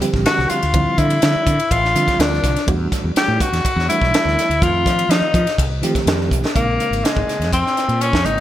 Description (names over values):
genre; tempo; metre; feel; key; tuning
electric jazz fusion; 124 BPM; 4/4; straight; unclear; A4 = 441 Hz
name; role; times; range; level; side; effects
mellow reed electric piano; accompaniment; 0.0-8.4 s; Db3 to G4; -24 LUFS; right 3 dB; fast tremolo
crisp fusion drum kit; drums; 0.0-8.4 s; hi-hat, kick drum, ride cymbal, snare drum; -20 LUFS; equal; gated reverb
mellow fretless electric bass; bass; 0.1-8.4 s; Ab1 to F3; -20 LUFS; equal; none
clear tenor saxophone; melody; 0.3-8.4 s; Ab3 to G4; -18 LUFS; left 2 dB; none
room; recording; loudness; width
moderate plate reverb, RT60 1.4 s, small room ambience; bright 1980s-style digital production; -15 LUFS; side -12 dB against mid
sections
0.0-6.6 A section; 6.6-8.4 B section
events
tenor saxophone solo 0.0-6.6; drum fill 6.3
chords
0.0 Dm11; 2.7 Em11; 4.6 F7; 6.6 Bbm11